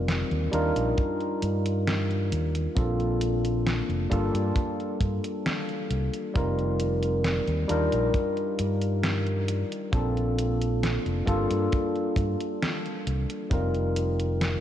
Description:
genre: vaporwave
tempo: 67 BPM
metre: 4/4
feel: straight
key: unclear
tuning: A4 = 440 Hz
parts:
  - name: bright tine electric piano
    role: accompaniment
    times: 0.0-14.6 s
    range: G3 to Bb4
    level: -27 LUFS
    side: left 1 dB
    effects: lush chorus, vintage 12-bit sampler grit, ping-pong delay
  - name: fingered electric bass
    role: bass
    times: 0.0-14.5 s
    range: F1 to G2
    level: -28 LUFS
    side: equal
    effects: tube saturation
  - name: detuned 8-bit digital drum machine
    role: drums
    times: 0.1-14.6 s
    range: hi-hat, snare drum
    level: -32 LUFS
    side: equal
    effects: studio reverb
  - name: kick drum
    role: drums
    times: 1.0-13.7 s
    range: none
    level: -29 LUFS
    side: equal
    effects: studio reverb
room: wet lush hall reverb, RT60 2.8 s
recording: dreamy mix soaked in reverb, cassette tape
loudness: -24 LUFS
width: side -11 dB against mid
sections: 0.0-14.6 A section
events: none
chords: 0.0 F7sus4; 0.5 Ebmaj9; 2.8 Bbmaj9; 4.1 Gm7; 6.4 F7sus4; 7.7 Ebmaj9; 9.9 Bbmaj9; 11.3 Gm7; 13.5 F7sus4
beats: 0.08 0.98 1.88 | 2.77 3.67 4.56 5.46 | 6.35 7.25 8.14 9.04 | 9.94 10.83 11.73 12.62 | 13.52 14.41

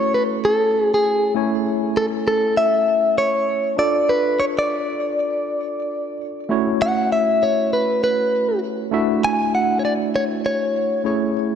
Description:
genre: R&B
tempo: 99 BPM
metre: 4/4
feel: swing 62% on 16ths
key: unclear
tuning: A4 = 440 Hz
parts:
  - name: direct-recorded clean electric guitar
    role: melody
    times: 0.0-11.0 s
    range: G#4 to G#5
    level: -19 LUFS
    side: equal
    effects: spring reverb, digital delay
  - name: tine electric piano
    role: accompaniment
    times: 0.0-11.6 s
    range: A3 to G#5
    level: -23 LUFS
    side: equal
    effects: medium stereo tremolo
room: moderate lush hall reverb, RT60 3.0 s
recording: none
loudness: -17 LUFS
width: side -8 dB against mid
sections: 0.0-11.6 A section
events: none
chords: 0.0 F#m7; 1.4 Amaj7; 3.8 Dm; 6.5 F#m7; 8.9 Dmaj9; 11.0 Amaj7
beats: 0.44 1.05 | 1.65 2.26 2.87 3.47 | 4.08 4.68 5.29 5.90 | 6.50 7.11 7.71 8.32 | 8.93 9.53 10.14 10.74 | 11.35

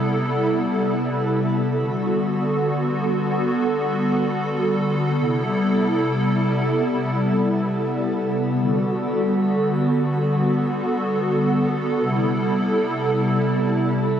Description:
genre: hip hop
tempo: free time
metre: none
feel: none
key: unclear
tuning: A4 = 438 Hz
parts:
  - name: hollow soft pad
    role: solo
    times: 0.0-14.2 s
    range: C3 to A4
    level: -19 LUFS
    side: equal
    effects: ensemble chorus
room: moderate shimmer reverb, RT60 5.9 s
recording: none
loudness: -19 LUFS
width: side -9 dB against mid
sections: 0.0-1.8 A section; 1.8-14.2 B section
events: none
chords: 0.0 Am9; 1.8 Gmaj9; 5.2 Am9; 8.6 Gmaj9; 12.0 Am9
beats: free time

